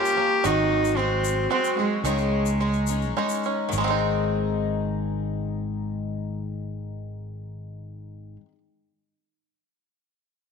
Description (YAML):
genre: acoustic folk duo or small band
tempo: 101-114 BPM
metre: 3/4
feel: straight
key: Ab major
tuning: A4 = 440 Hz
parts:
  - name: rich cello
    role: melody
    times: 0.0-3.1 s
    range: Ab3 to G4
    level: -24 LUFS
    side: right 2 dB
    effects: none
  - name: picked twelve-string acoustic guitar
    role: accompaniment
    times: 0.0-8.6 s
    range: Ab2 to Bb4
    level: -29 LUFS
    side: left 12 dB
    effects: none
  - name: bluegrass banjo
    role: arpeggios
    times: 0.0-8.6 s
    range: Eb3 to Gb4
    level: -29 LUFS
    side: right 12 dB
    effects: slapback echo
  - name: egg shaker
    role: percussion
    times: 0.1-4.0 s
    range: none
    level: -37 LUFS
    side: left 16 dB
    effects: none
  - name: fingered electric bass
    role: bass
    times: 0.4-8.4 s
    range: Ab1 to Db2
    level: -29 LUFS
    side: right 1 dB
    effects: none
room: moderate echo chamber reverb, RT60 1.8 s, small room ambience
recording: 1960s-style stereo with parts hard left and right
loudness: -22 LUFS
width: side -6 dB against mid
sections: 0.0-3.7 A section; 3.7-7.3 B section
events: slowing down 0.4-3.7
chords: 0.4 Ab7; 2.0 Dbsus2; 3.7 Ab